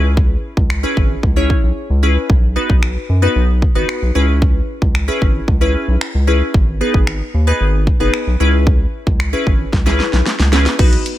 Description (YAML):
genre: dance-pop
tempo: 113 BPM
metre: 4/4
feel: straight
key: unclear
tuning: A4 = 440 Hz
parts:
  - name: glassy wavetable pluck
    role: accompaniment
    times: 0.0-11.1 s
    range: B3 to C#5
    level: -19 LUFS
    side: left 1 dB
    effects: chorus, sidechain pumping
  - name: round analog bass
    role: bass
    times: 0.0-11.0 s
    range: F#1 to F#2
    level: -15 LUFS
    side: equal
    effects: sidechain pumping
  - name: pop drum kit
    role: drums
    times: 0.2-11.2 s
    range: crash cymbal, finger snaps, hi-hat, kick drum, snare drum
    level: -15 LUFS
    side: equal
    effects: none
room: little or no reverb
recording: none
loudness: -12 LUFS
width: side -14 dB against mid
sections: 0.0-10.8 A section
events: drums muted 1.8-2.3; drum fill 9.7-10.8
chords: 0.0 C#m7; 2.3 B; 4.2 C#m7; 6.5 G#m; 8.4 C#m7